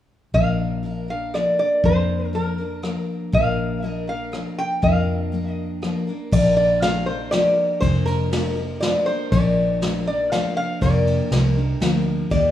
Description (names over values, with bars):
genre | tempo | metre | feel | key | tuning
honky-tonk and classic country | 120 BPM | 3/4 | straight | Bb major | A4 = 441 Hz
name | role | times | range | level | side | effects
lap resonator guitar | melody | 0.3-12.5 s | Bb4 to G5 | -22 LUFS | equal | none
picked steel-string acoustic guitar | accompaniment | 0.3-12.5 s | Bb2 to Bb4 | -25 LUFS | left 3 dB | none
vintage muted fingered electric bass | bass | 0.3-12.5 s | F1 to F2 | -23 LUFS | left 1 dB | none
vintage brush drum kit | drums | 0.3-12.4 s | crash cymbal, kick drum, ride cymbal, rim click, snare drum | -26 LUFS | equal | none
room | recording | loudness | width
light reverb, studio ambience | rough home demo mix | -18 LUFS | side -12 dB against mid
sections
0.3-6.3 A section; 6.3-12.5 B section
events
none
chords
0.3 Bb